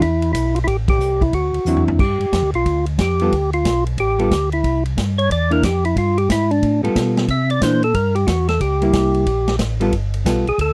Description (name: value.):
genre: soul jazz organ trio.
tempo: 182 BPM.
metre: 4/4.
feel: swing 64% on 8ths.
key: G mixolydian.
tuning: A4 = 439 Hz.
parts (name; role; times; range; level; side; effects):
percussive tonewheel organ; melody; 0.0-10.7 s; D4 to E5; -21 LUFS; equal; slow rotary speaker, overdrive.
mellow tonewheel organ; bass; 0.0-10.7 s; G1 to C3; -22 LUFS; equal; chorus vibrato, slow rotary speaker.
vintage drum kit; drums; 0.0-10.7 s; crash cymbal, hi-hat, kick drum, ride cymbal, snare drum, toms; -26 LUFS; equal; none.
vintage hollow-body jazz guitar; accompaniment; 1.7-10.5 s; D3 to A4; -21 LUFS; equal; none.
room: little or no reverb.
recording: dry, close 1970s-style studio recording.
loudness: -18 LUFS.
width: mono.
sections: 0.0-2.0 A section; 2.0-10.7 B section.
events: band accent 0.8; drum fill 1.7-2.0; tonewheel organ solo 2.0-10.7.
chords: 0.0 E5; 0.7 Am7; 1.3 D9; 2.0 G9; 4.6 Cadd9; 6.0 G9; 7.3 C9; 8.6 C#dim7; 9.9 G9.